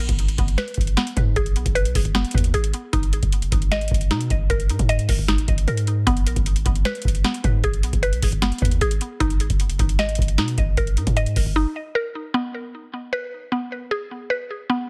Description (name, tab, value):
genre	hip hop, trap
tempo	153 BPM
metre	4/4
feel	half-time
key	G# minor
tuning	A4 = 439 Hz
part	mallet-like synth pluck	arpeggios	0.0-14.9 s	B3 to D#5	-28 LUFS	equal	chorus, low-pass filter, delay
part	hard-hitting 808-style bass	bass	0.0-11.6 s	F#1 to B2	-26 LUFS	equal	none
part	booming analog drum machine	drums	0.1-11.7 s	hi-hat, kick drum, snare drum	-24 LUFS	equal	none
room	digital ambience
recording	dense, heavily limited modern master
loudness	-22 LUFS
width	mono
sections	0.0-12.3 A section; 12.3-14.9 B section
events	break 11.6-12.3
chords	0.0 G#m; 2.9 D#5; 6.1 G#m; 9.2 D#5; 12.3 G#m